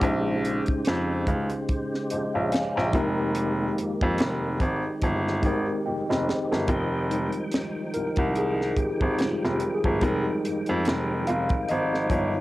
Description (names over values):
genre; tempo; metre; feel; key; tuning
R&B, neo-soul; 72 BPM; 4/4; swing 56% on 16ths; F minor; A4 = 440 Hz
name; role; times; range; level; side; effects
mellow tine electric piano; accompaniment; 0.0-12.4 s; G3 to Bb5; -28 LUFS; left 1 dB; medium stereo tremolo
percussive tonewheel organ; sustained chords; 0.0-12.4 s; Db3 to G5; -33 LUFS; equal; slow rotary speaker, overdrive, chorus vibrato
clear baby grand piano; bass; 0.0-12.3 s; F1 to F2; -27 LUFS; equal; none
tight funk drum kit; drums; 0.0-12.3 s; finger snaps, hi-hat, kick drum, snare drum; -28 LUFS; equal; cassette tape
room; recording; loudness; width
light reverb, small room ambience; home recording on cassette; -23 LUFS; side -17 dB against mid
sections
0.0-6.7 A section; 6.7-12.4 B section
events
drum fill 5.9-6.7; tine electric piano solo 6.7-12.4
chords
0.0 Bbm11; 2.9 Fm11; 6.7 Fm9